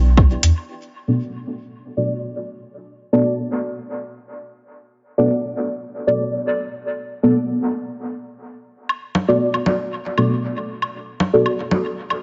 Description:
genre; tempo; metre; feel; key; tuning
dub techno; 117 BPM; 4/4; straight; B minor; A4 = 439 Hz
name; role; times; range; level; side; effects
deep mellow chord stab; stabs; 0.0-11.4 s; B3 to D5; -22 LUFS; equal; chorus, phaser, dub echo
soft dub sub bass; bass; 0.0-0.5 s; B1 to E2; -17 LUFS; equal; sidechain pumping
woodblock and congas; percussion; 0.2-0.3, 8.9-12.2 s; none; -26 LUFS; equal; sidechain pumping on perc, dub echo
electronic hi-hat; drums; 0.4-0.5 s; none; -21 LUFS; equal; overdrive
room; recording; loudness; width
wet echo chamber reverb, RT60 1.8 s, digital ambience; nothing above 7.6 kHz; -21 LUFS; mono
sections
0.7-12.2 A section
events
none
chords
0.0 Em7; 0.7 Bm7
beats
0.17 | 0.69 1.20 1.71 2.23 | 2.74 3.25 3.76 4.28 | 4.79 5.30 5.82 6.33 | 6.84 7.35 7.87 8.38 | 8.89 9.40 9.92 10.43 | 10.94 11.46 11.97

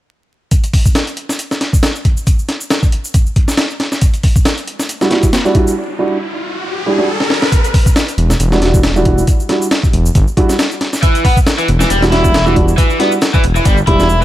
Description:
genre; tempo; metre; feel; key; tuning
breakbeat, breaks; 137 BPM; 4/4; swing 55% on 16ths; E minor; A4 = 442 Hz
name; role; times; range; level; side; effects
breakbeat sampler-style drum kit; drums; 0.5-14.1 s; hi-hat, kick drum, snare drum; -12 LUFS; equal; none
shaker; drums; 0.5-14.2 s; none; -28 LUFS; equal; overdrive
riser; sound effects; 5.6-7.5 s; none; -21 LUFS; left 1 dB; none
dark baby grand piano; stabs; 5.0-14.1 s; G3 to G4; -16 LUFS; right 2 dB; ping-pong delay
detuned saw bass; bass; 8.2-14.2 s; E1 to G1; -14 LUFS; equal; tube saturation
overdriven electric guitar; riff; 11.0-14.2 s; E3 to E4; -15 LUFS; left 1 dB; tube saturation, vintage 12-bit sampler grit
room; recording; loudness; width
little or no reverb; vinyl crackle; -11 LUFS; side -14 dB against mid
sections
0.5-7.5 A section; 7.5-14.2 B section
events
riser 5.6-7.5; break 5.8-7.5; drum fill 7.2-7.5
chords
0.5 Em9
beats
| 0.52 0.96 1.39 1.83 | 2.27 2.71 3.15 3.58 | 4.02 4.46 4.90 5.34 | 5.77 6.21 6.65 7.09 | 7.53 7.96 8.40 8.84 | 9.28 9.71 10.15 10.59 | 11.03 11.47 11.90 12.34 | 12.78 13.22 13.66 14.10

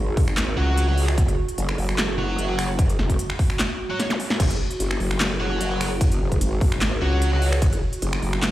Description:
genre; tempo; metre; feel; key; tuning
heavy wobble dubstep; 149 BPM; 4/4; half-time; unclear; A4 = 441 Hz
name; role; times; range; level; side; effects
growl bass; bass; 0.0-8.5 s; F#1 to C#2; -23 LUFS; equal; chorus, overdrive
warbly tape-like pad; texture; 0.0-8.5 s; F#4; -32 LUFS; right 3 dB; chorus, built-in reverb, sidechain pumping
big-room dance drum kit; drums; 0.2-8.5 s; crash cymbal, finger snaps, handclaps, hi-hat, ride cymbal, snare drum; -27 LUFS; equal; none
electronic kick drum; drums; 0.2-7.7 s; none; -22 LUFS; equal; none
thick fuzz guitar; stabs; 0.6-7.5 s; F#4 to F#5; -29 LUFS; equal; distortion, digital delay
zap; sound effects; 4.1-4.2 s; none; -32 LUFS; equal; none
room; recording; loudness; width
little or no reverb; played on a big sound system in a bare room, stone room reverb; -20 LUFS; side -15 dB against mid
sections
0.0-8.5 A section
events
break 3.6-4.4; drum fill 4.0-4.4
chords
0.0 F#sus2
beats
0.37 0.77 | 1.18 1.58 1.98 2.38 | 2.79 3.19 3.59 4.00 | 4.40 4.80 5.20 5.61 | 6.01 6.41 6.82 7.22 | 7.62 8.02 8.43

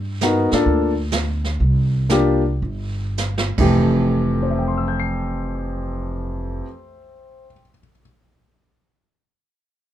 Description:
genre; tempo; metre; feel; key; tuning
jazz piano trio; 96-136 BPM; 4/4; swing 67% on 8ths; F major; A4 = 442 Hz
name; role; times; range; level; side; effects
upright bass; bass; 0.0-6.6 s; F1 to Ab2; -22 LUFS; right 1 dB; none
warm concert grand piano; melody; 0.2-8.0 s; F2 to C7; -19 LUFS; left 1 dB; none
jazz brush drum kit; drums; 0.2-3.7 s; brushed snare drum, crash cymbal, hi-hat, kick drum, snare drum; -25 LUFS; right 3 dB; none
room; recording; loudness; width
moderate club reverb, RT60 0.5 s; none; -18 LUFS; side -11 dB against mid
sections
0.0-3.8 A section; 3.8-8.8 B section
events
slowing down 0.0-3.8; drum fill 3.2-3.8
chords
0.0 Gm9; 1.6 C5; 3.5 Fmaj9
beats
0.21 0.66 1.12 | 1.60 2.10 2.62 3.18 | 3.78 4.41 5.04 5.66 | 6.29 6.92 7.54

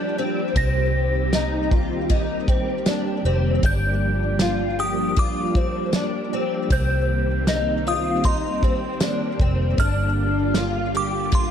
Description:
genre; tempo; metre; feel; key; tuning
dream pop; 78 BPM; 4/4; straight; unclear; A4 = 439 Hz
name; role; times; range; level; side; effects
glassy synth bell; melody; 0.0-11.5 s; C6 to Bb6; -28 LUFS; equal; chorus, ping-pong delay
soft string machine; sustained chords; 0.0-11.5 s; D3 to G4; -26 LUFS; right 1 dB; ensemble chorus
picked twelve-string acoustic guitar; arpeggios; 0.0-11.5 s; C4 to G4; -26 LUFS; left 2 dB; ensemble chorus, ping-pong delay
vintage muted fingered electric bass; bass; 0.0-11.5 s; F1 to C2; -24 LUFS; equal; none
loose indie drum kit; drums; 0.6-11.5 s; kick drum, ride cymbal, snare drum, tambourine; -22 LUFS; equal; none
room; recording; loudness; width
light reverb; dark, warm production; -19 LUFS; side -8 dB against mid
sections
0.0-11.5 A section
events
none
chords
0.0 Gm7; 0.6 Cm7; 3.6 Gm7; 6.7 Cm7; 9.8 Gm7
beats
| 0.56 1.33 2.10 2.87 | 3.64 4.41 5.17 5.94 | 6.71 7.48 8.25 9.02 | 9.79 10.56 11.33

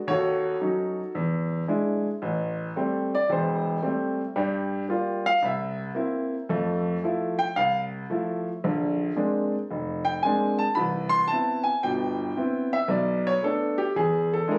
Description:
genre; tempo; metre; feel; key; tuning
solo jazz; 112 BPM; 4/4; swing 68% on 8ths; A minor; A4 = 441 Hz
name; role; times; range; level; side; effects
warm concert grand piano; solo; 0.0-14.6 s; E1 to C6; -26 LUFS; equal; none
room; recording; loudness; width
light reverb; recorded on a phone in the room, studio ambience; -26 LUFS; mono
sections
0.0-2.2 A section; 2.2-14.6 B section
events
grand piano solo 2.2-14.6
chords
0.1 D#m7b5; 1.1 E7; 2.2 Am7; 4.3 Gm7; 5.4 C7; 6.5 Fmaj7; 8.6 Bb9; 10.8 Cmaj7; 12.9 Bm9; 13.9 E7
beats
| 0.08 0.61 1.14 1.68 | 2.21 2.75 3.28 3.81 | 4.35 4.88 5.42 5.95 | 6.49 7.02 7.55 8.09 | 8.62 9.15 9.68 10.22 | 10.75 11.28 11.81 12.35 | 12.88 13.41 13.95 14.48

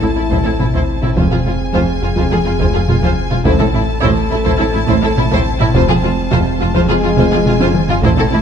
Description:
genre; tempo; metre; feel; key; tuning
cinematic, hybrid orchestral and electronic film score; 105 BPM; 4/4; straight; unclear; A4 = 440 Hz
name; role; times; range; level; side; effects
warm symphonic violin section; melody; 0.0-8.4 s; Ab5 to A5; -25 LUFS; left 1 dB; none
warm symphonic violin section; second line; 0.0-8.4 s; E4 to C5; -22 LUFS; left 3 dB; none
rich symphonic viola section; accompaniment; 0.0-8.4 s; E4 to F4; -22 LUFS; equal; none
dark French horn section; sustained chords; 0.0-8.4 s; Ab3 to A4; -21 LUFS; left 2 dB; none
soft round pluck; arpeggios; 0.0-8.4 s; F3 to A4; -25 LUFS; right 3 dB; none
clear symphonic double bass section; bass; 0.0-8.4 s; F1 to A1; -20 LUFS; right 5 dB; none
rich symphonic cello section; bass; 0.0-8.4 s; F2 to A2; -20 LUFS; right 2 dB; none
warm sub bass; bass; 0.0-8.4 s; F1 to A1; -22 LUFS; left 1 dB; none
impact; sound effects; 0.0-1.2 s; none; barely audible; none; none
solo taiko drums; drums; 0.3-8.4 s; none; -18 LUFS; left 1 dB; none
room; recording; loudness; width
moderate scoring stage reverb, RT60 1.8 s; dark, warm production; -12 LUFS; side -8 dB against mid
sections
0.0-8.4 A section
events
impact 0.0-1.2; drum fill 7.5-8.0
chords
0.0 Am; 1.2 Fm; 3.5 Am; 5.7 Fm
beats
0.03 0.60 | 1.17 1.74 2.31 2.88 | 3.46 4.03 4.60 5.17 | 5.74 6.31 6.88 7.46 | 8.03

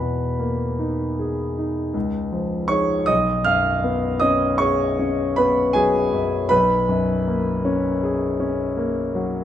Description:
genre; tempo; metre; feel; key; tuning
classical, impressionist solo piano; 53 BPM (dotted quarters); 9/8; rubato; G# dorian; A4 = 440 Hz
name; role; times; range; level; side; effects
warm concert grand piano; solo; 0.0-9.4 s; B1 to E#6; -19 LUFS; equal; none
room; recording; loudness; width
moderate recital hall reverb, RT60 1.6 s; close, detailed microphones; -19 LUFS; side -10 dB against mid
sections
0.0-9.4 A section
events
none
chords
0.0 Emaj7#11; 1.9 C#9; 3.1 B69; 6.5 G#m11/B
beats
0.80 1.95 | 3.10 4.22 5.38 | 6.52 7.67 8.78

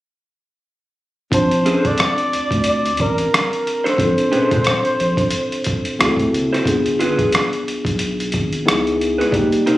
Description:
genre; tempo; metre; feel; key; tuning
R&B, neo-soul; 90 BPM; 4/4; swing 58% on 16ths; Bb major; A4 = 440 Hz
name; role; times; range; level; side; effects
mellow flugelhorn; melody; 1.3-5.9 s; Bb4 to D5; -20 LUFS; equal; tape echo
tine electric piano; accompaniment; 1.3-9.8 s; Bb3 to A5; -20 LUFS; left 1 dB; none
round analog bass; bass; 1.3-9.8 s; F#1 to C3; -24 LUFS; equal; none
boom bap sampler-style drum kit; drums; 1.3-9.8 s; hi-hat, kick drum, rim click; -20 LUFS; equal; none
electric guitar through a small old amp; second line; 1.7-9.8 s; D4 to C5; -21 LUFS; right 2 dB; spring reverb
room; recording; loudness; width
light reverb; recorded on a phone in the room, studio reverb; -15 LUFS; side -16 dB against mid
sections
1.3-9.8 A section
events
none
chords
1.3 Bbmaj9; 6.0 D9; 6.7 G7b9; 8.7 Dbm7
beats
| 1.32 1.99 2.65 3.32 | 3.99 4.65 5.32 5.99 | 6.65 7.32 7.99 8.65 | 9.32

